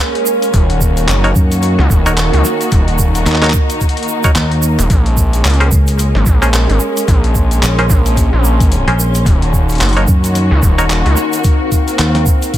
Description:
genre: glitch hop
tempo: 110 BPM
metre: 4/4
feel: swing 59% on 16ths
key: Eb dorian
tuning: A4 = 440 Hz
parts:
  - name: muted studio string section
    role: sustained chords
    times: 0.0-12.6 s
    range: Eb3 to Gb4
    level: -20 LUFS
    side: left 3 dB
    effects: sidechain pumping
  - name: warbly tape-like pad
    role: texture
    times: 0.0-12.6 s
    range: Eb4 to C6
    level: -21 LUFS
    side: right 2 dB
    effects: chorus, built-in reverb, sidechain pumping
  - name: boom bap sampler-style drum kit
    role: drums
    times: 0.2-12.6 s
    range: handclaps, hi-hat, snare drum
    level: -20 LUFS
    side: left 1 dB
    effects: studio ambience
  - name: egg shaker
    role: percussion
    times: 0.3-12.6 s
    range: none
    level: -23 LUFS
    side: right 6 dB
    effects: none
  - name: gritty driven synth bass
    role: bass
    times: 0.5-11.2 s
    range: Eb1 to Db2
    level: -13 LUFS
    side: equal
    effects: tube saturation
  - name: electronic kick drum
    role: drums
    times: 0.5-12.6 s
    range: none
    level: -12 LUFS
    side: equal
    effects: studio ambience
  - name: muted clav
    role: stabs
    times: 1.2-10.9 s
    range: Db4 to Db5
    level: -21 LUFS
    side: equal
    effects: sidechain pumping, dub echo
  - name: overdriven fingered electric bass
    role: bass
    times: 1.4-12.2 s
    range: Bb1 to Gb2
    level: -13 LUFS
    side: equal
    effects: none
room: digital ambience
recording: none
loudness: -10 LUFS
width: side -13 dB against mid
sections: 0.0-12.6 A section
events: break 0.0-0.5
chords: 0.0 Bbm9; 0.5 Ebm7; 4.9 Bbm9; 9.3 Ebm7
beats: | 0.54 1.08 1.63 2.17 | 2.72 3.26 3.81 4.35 | 4.90 5.45 5.99 6.54 | 7.08 7.63 8.17 8.72 | 9.26 9.81 10.35 10.90 | 11.45 11.99 12.54

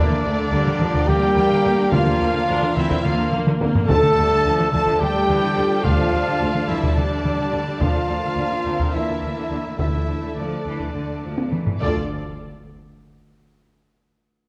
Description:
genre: cinematic, epic orchestral film score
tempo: 214 BPM (eighths)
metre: 7/8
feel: straight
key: D minor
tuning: A4 = 440 Hz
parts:
  - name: warm symphonic violin section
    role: melody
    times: 0.0-12.1 s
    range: D5 to A5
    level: -33 LUFS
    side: equal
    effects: none
  - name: warm symphonic violin section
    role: second line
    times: 0.0-12.1 s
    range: D5 to A5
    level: -34 LUFS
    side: equal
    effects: none
  - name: rich symphonic viola section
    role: accompaniment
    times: 0.0-12.1 s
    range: E3 to A4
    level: -30 LUFS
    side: equal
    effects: none
  - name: mellow French horn section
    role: sustained chords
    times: 0.0-12.1 s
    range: D4 to A4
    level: -27 LUFS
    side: equal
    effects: none
  - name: warm studio string section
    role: sustained chords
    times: 0.0-12.1 s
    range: D4 to A5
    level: -33 LUFS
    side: equal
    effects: none
  - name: warm trombone section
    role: sustained chords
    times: 0.0-12.1 s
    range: D3 to A3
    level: -32 LUFS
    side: equal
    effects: none
  - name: clear trumpet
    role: stabs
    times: 0.0-12.1 s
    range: D4 to D5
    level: -30 LUFS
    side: equal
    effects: none
  - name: rich studio cello section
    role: bass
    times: 0.1-12.1 s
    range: D2 to F3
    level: -31 LUFS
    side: equal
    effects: none
  - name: taiko ensemble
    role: drums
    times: 0.1-11.9 s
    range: none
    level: -26 LUFS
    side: equal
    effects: none
  - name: rich symphonic double bass section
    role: bass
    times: 0.2-12.1 s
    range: D2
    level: -31 LUFS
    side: equal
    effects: none
  - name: timpani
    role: percussion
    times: 3.9-4.7, 9.8-12.1 s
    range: D3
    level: -32 LUFS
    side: equal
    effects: none
  - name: impact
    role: sound effects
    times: 11.8-13.9 s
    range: none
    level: -41 LUFS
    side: equal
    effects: none
room: wet scoring stage reverb, RT60 1.6 s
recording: worn, warbling old tape, cassette tape, warbly pitch drift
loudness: -20 LUFS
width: mono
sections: 0.0-11.8 A section; 11.8-13.9 B section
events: drum fill 3.5-3.9, 11.4-11.8; impact 11.8-13.9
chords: 0.0 Bb/D; 3.9 Dm; 7.8 Bb/D; 9.8 Dm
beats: 0.24 0.52 0.80 1.08 1.36 1.64 | 1.92 2.20 2.48 2.76 3.04 3.32 3.60 | 3.88 4.16 4.44 4.72 5.00 5.28 5.56 | 5.84 6.12 6.40 6.68 6.96 7.25 7.53 | 7.81 8.09 8.37 8.65 8.94 9.22 9.50 | 9.79 10.07 10.36 10.65 10.94 11.23 11.52 | 11.81 12.11 12.40 12.70 12.99 13.28 13.58

